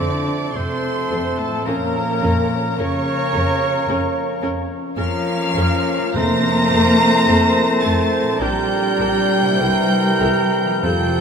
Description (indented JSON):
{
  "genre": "classical",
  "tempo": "48-55 BPM",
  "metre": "4/4",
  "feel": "rubato",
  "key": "F major",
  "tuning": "A4 = 435 Hz",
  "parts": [
    { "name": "rich studio violin section", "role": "melody", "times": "0.0-11.2 s", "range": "A5 to Bb6", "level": "-26 LUFS", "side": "right 1 dB", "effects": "none" },
    { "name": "rich studio violin section", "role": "second line", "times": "0.0-11.2 s", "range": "A4 to Bb5", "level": "-26 LUFS", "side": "left 2 dB", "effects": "none" },
    { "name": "silver concert flute", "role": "second line", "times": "0.0-11.2 s", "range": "A5 to C6", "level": "-30 LUFS", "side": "right 3 dB", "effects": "none" },
    { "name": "warm clarinet", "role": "second line", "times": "0.0-11.2 s", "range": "C5 to D5", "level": "-31 LUFS", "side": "right 4 dB", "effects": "none" },
    { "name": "warm oboe", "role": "second line", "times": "0.0-11.2 s", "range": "A4 to Bb5", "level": "-26 LUFS", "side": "right 4 dB", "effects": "none" },
    { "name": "rich studio viola section", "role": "accompaniment", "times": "0.0-10.9 s", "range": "C4 to Bb4", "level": "-30 LUFS", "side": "right 1 dB", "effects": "none" },
    { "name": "warm bassoon", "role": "accompaniment", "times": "0.0-11.2 s", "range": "E3 to Bb3", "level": "-27 LUFS", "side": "left 4 dB", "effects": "none" },
    { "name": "clear trombone section", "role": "sustained chords", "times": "0.0-11.2 s", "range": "F2 to F4", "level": "-27 LUFS", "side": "equal", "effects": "none" },
    { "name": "warm French horn section", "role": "sustained chords", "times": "0.0-11.2 s", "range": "A3 to Bb4", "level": "-26 LUFS", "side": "right 3 dB", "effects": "stereo widening" },
    { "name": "concert harp", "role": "arpeggios", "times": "0.0-11.2 s", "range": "Bb2 to D5", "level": "-29 LUFS", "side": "right 1 dB", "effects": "none" },
    { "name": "warm trumpet", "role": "stabs", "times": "0.0-11.2 s", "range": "A4 to C5", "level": "-27 LUFS", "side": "left 5 dB", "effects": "none" },
    { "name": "dark studio double bass section", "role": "bass", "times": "0.0-10.9 s", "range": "Bb1 to F2", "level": "-25 LUFS", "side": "equal", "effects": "none" },
    { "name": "rich studio cello section", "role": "bass", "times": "0.0-11.2 s", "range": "A2 to Bb3", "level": "-22 LUFS", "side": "left 1 dB", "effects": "none" },
    { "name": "timpani", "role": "percussion", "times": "6.1-11.2 s", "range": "F2", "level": "-29 LUFS", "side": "right 1 dB", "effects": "none" }
  ],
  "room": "wet cathedral reverb, RT60 5.0 s",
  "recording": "in a vast, echoing space",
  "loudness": "-16 LUFS",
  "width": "side -6 dB against mid",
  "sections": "0.0-11.2 A section",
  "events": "timpani fill 10.8-11.2",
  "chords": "0.0 F; 1.7 Bbm/F; 6.2 F; 8.4 Gm/Bb; 9.6 C7",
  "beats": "0.57 | 1.68 2.79 3.90 4.99 | 6.16 7.27 8.40 9.60 | 10.84"
}